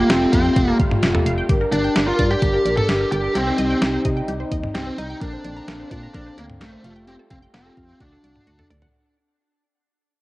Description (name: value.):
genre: synth-pop.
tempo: 129 BPM.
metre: 4/4.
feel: straight.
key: G minor.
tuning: A4 = 440 Hz.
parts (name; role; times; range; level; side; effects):
bluesy overdriven lead guitar; melody; 0.0-8.7 s; A3 to A4; -22 LUFS; equal; distortion, cassette tape, analog delay.
dark French horn section; sustained chords; 0.0-8.9 s; C3 to Bb4; -26 LUFS; equal; cassette tape.
resonant blip pluck; arpeggios; 0.0-8.9 s; F#4 to Bb5; -30 LUFS; equal; phaser, cassette tape, analog delay.
solid FM bass; bass; 0.0-8.9 s; F1 to C3; -26 LUFS; equal; none.
detuned 8-bit digital drum machine; drums; 0.1-8.9 s; hi-hat, kick drum, snare drum, toms; -22 LUFS; equal; none.
room: moderate spring reverb, RT60 1.8 s.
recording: home recording on cassette.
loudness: -17 LUFS.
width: side -19 dB against mid.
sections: 0.0-8.9 A section.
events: fade-out 0.0-8.9; drum fill 8.0-8.9.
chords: 0.0 Fadd9; 1.5 Gm; 3.4 Cm; 5.2 Bbadd9; 6.8 Fadd9; 8.0 D.